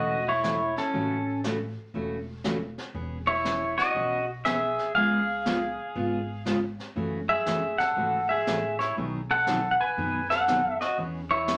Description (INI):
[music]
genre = country, western swing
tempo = 120 BPM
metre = 4/4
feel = swing 66% on 8ths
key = E major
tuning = A4 = 440 Hz
[part]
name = pedal steel guitar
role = melody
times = 0.0-11.6 s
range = C#4 to G#5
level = -27 LUFS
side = equal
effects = none
[part]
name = picked steel-string acoustic guitar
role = accompaniment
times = 0.0-11.6 s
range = B2 to G#4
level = -34 LUFS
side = equal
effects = none
[part]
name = upright bass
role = bass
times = 0.0-11.6 s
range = E1 to F#2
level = -42 LUFS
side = equal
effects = none
[part]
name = jazz brush drum kit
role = drums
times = 0.4-11.6 s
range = brushed snare drum, hi-hat, snare drum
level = -40 LUFS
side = equal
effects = none
[sound]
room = wet club reverb, RT60 0.6 s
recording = none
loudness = -27 LUFS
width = mono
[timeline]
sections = 0.0-11.6 A section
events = none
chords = 0.0 A6; 2.9 E6; 5.0 C#7; 7.0 F#m7; 9.0 B6; 11.0 E6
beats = 0.43 | 0.94 1.44 1.94 2.44 | 2.94 3.45 3.95 4.45 | 4.95 5.46 5.96 6.46 | 6.96 7.46 7.96 8.47 | 8.97 9.47 9.97 10.47 | 10.97 11.48